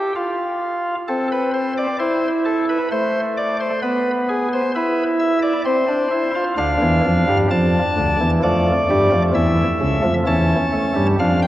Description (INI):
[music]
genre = classical, baroque-style 3-part fugue for pipe organ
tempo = 65 BPM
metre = 3/4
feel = straight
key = unclear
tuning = A4 = 440 Hz
[part]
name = chamber organ, cornet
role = solo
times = 0.0-11.5 s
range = C#2 to A5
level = -16 LUFS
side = equal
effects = none
[sound]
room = wet church reverb, RT60 3.5 s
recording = worn, warbling old tape, cassette tape, warbly pitch drift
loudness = -16 LUFS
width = side -14 dB against mid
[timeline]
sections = 0.0-11.5 A section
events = none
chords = 0.0 N.C.; 1.1 Am/C; 2.9 Am; 3.8 E7/B; 5.7 Cadd9; 6.6 Dm; 8.4 Dm/F; 9.3 A7